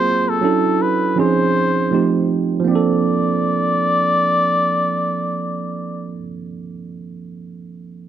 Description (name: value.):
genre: R&B.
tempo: 80 BPM.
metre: 4/4.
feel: swing 59% on 16ths.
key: Bb major.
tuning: A4 = 439 Hz.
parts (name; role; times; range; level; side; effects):
trumpet with cup mute; melody; 0.0-6.2 s; A4 to D5; -19 LUFS; left 2 dB; none.
tine electric piano; accompaniment; 0.0-8.1 s; F3 to A4; -19 LUFS; right 5 dB; none.
room: light reverb, small room ambience.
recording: dark, warm production.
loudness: -15 LUFS.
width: side -10 dB against mid.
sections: 0.0-2.7 A section; 2.7-5.7 B section.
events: none.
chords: 0.4 Dmaj9; 1.2 Dbmaj9; 1.9 F9; 2.7 Bbmaj9.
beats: 0.42 1.17 1.92 | 2.67 3.42 4.17 4.92.